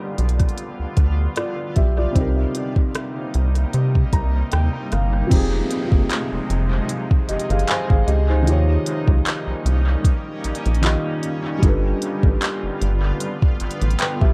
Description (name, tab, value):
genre	contemporary R&B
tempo	76 BPM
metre	4/4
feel	swing 54% on 16ths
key	F minor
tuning	A4 = 440 Hz
part	felt-muted upright piano	accompaniment	0.0-14.3 s	C3 to Bb5	-28 LUFS	equal	dub echo
part	granular cloud pad	sustained chords	0.0-14.3 s	C3 to F4	-32 LUFS	equal	built-in reverb, tremolo
part	rubbery square bass	bass	0.2-14.3 s	F1 to C3	-22 LUFS	equal	none
part	smooth R&B drum kit	drums	0.2-14.3 s	crash cymbal, handclaps, hi-hat, kick drum, rim click	-22 LUFS	equal	none
part	downlifter	sound effects	5.4-11.6 s	none	-37 LUFS	equal	none
room	digital ambience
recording	echo-heavy mix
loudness	-20 LUFS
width	mono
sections	0.0-5.3 A section; 5.3-14.3 B section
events	felt piano fill 3.7-5.3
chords	0.0 G7; 2.2 Cm7; 5.3 Fm7; 8.5 Eb7; 11.6 G7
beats	0.57 1.36 | 2.15 2.94 3.73 4.52 | 5.31 6.10 6.89 7.68 | 8.47 9.26 10.05 10.84 | 11.63 12.42 13.21 14.00